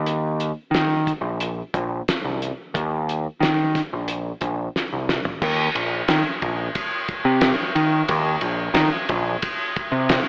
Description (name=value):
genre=psychedelic rock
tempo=90 BPM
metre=4/4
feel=straight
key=unclear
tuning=A4 = 440 Hz
part: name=growling picked electric bass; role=bass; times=0.0-10.2 s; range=Bb1 to Eb3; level=-21 LUFS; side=equal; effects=overdrive
part: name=cloth-damped thuddy drum kit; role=drums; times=0.1-10.3 s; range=crash cymbal, hi-hat, kick drum, ride cymbal, snare drum, toms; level=-23 LUFS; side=equal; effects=none
room=moderate lush hall reverb, RT60 1.9 s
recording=dreamy mix soaked in reverb, AM radio sound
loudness=-20 LUFS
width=side -40 dB against mid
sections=0.0-5.4 A section; 5.4-10.3 B section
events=drum fill 4.8-5.4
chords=none